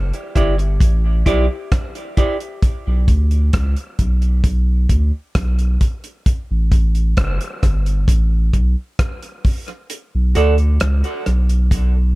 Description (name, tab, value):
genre	dub reggae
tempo	66 BPM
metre	4/4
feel	straight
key	B minor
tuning	A4 = 440 Hz
part	warm sub bass	bass	0.0-12.1 s	F#1 to D2	-15 LUFS	equal	none
part	damped 70s drum kit	drums	0.1-11.9 s	hi-hat, kick drum, rim click	-17 LUFS	equal	none
part	semi-hollow electric guitar	accompaniment	0.4-2.4, 10.4-10.5 s	E4 to D5	-22 LUFS	right 2 dB	high-pass filter, dub echo
room	studio reverb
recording	dark, warm production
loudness	-15 LUFS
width	side -20 dB against mid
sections	0.0-12.2 A section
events	kick muted 9.9-11.7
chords	0.0 A7sus4; 2.6 Bm; 6.3 N.C.; 9.9 Bm